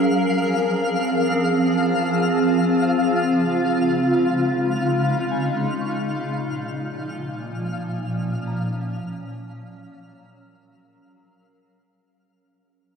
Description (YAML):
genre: ambient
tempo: free time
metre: none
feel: none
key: unclear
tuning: A4 = 440 Hz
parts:
  - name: granular cloud pad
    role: sustained chords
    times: 0.0-12.0 s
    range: Bb2 to Bb4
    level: -20 LUFS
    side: equal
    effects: built-in reverb
  - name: twinkling granular texture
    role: texture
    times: 0.0-12.1 s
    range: F5 to F6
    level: -28 LUFS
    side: left 2 dB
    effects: built-in reverb
  - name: soft synth bell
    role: arpeggios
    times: 3.0-12.0 s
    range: F5 to Db6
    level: -36 LUFS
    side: left 3 dB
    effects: none
room: wet concert hall reverb, RT60 2.3 s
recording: dark, warm production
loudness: -19 LUFS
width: side -6 dB against mid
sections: 0.0-12.0 A section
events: fade-out 3.6-12.0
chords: 0.0 Fm; 2.6 Dbmaj7; 5.7 Bbm7; 8.9 Gbmaj7